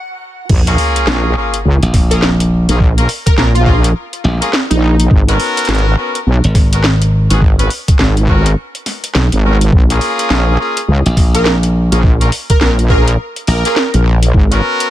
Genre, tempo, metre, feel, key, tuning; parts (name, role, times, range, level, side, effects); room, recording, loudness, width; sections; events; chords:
glitch hop; 104 BPM; 4/4; swing 61% on 16ths; A4 = 440 Hz
wobble bass; bass; 0.5-14.6 s; G#1 to C#2; -11 LUFS; equal; chorus, high-pass filter
drum and bass drum kit; drums; 0.5-14.9 s; crash cymbal, hi-hat, snare drum; -18 LUFS; equal
electronic kick drum; drums; 0.5-14.5 s; -11 LUFS; equal
sub drop; sound effects; 0.6-2.8 s; -21 LUFS; equal
bright horn section; stabs; 0.7-14.9 s; A#3 to B4; -19 LUFS; left 1 dB; sidechain pumping, ping-pong delay
glassy slap bass; bass; 1.8-7.3, 11.1-13.6 s; G#1 to A#1; -12 LUFS; equal
plucky unison lead; melody; 2.1-5.1, 11.3-14.1 s; D#4 to A#4; -19 LUFS; right 1 dB; ensemble chorus, ping-pong delay
digital ambience; high-pass filter; -10 LUFS; side -13 dB against mid
0.5-14.9 A section
break 0.0-0.5; drop 0.5-14.9; impact 0.5-2.8
0.5 A#m7; 5.1 G#m11; 9.7 A#m7; 14.3 G#m11